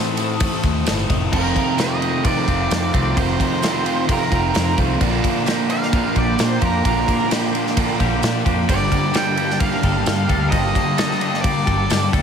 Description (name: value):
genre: rock, shoegaze and dream pop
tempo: 130 BPM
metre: 4/4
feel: straight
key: unclear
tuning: A4 = 440 Hz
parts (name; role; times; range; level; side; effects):
- ethereal airy pad; sustained chords; 0.0-12.2 s; C5 to Eb6; -31 LUFS; left 1 dB; ensemble chorus, built-in reverb
- twangy electric guitar; arpeggios; 0.0-12.2 s; Eb3 to A4; -29 LUFS; left 10 dB; analog chorus, tape echo
- crunchy overdriven guitar; riff; 0.0-12.2 s; F2 to A4; -23 LUFS; right 10 dB; reverse reverb
- thick fuzz guitar; riff; 0.0-12.2 s; F2 to Bb3; -24 LUFS; left 9 dB; distortion, wide subtle chorus
- tambourine; percussion; 0.1-12.0 s; none; -36 LUFS; right 14 dB; none
- loose indie drum kit; drums; 0.2-12.2 s; crash cymbal, kick drum, ride cymbal, snare drum; -22 LUFS; equal; none
- vintage muted fingered electric bass; bass; 0.6-12.2 s; F1 to Bb2; -22 LUFS; equal; none
- octave-fuzz lead guitar; melody; 1.3-12.1 s; Bb4 to G5; -24 LUFS; right 2 dB; distortion, tape echo
room: moderate concert hall reverb, RT60 1.6 s, small room ambience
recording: none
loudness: -16 LUFS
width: side -7 dB against mid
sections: 0.0-1.3 A section; 1.3-12.2 B section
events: none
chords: 0.0 Adim; 1.3 F7sus4; 5.0 Bb6; 8.7 Gm9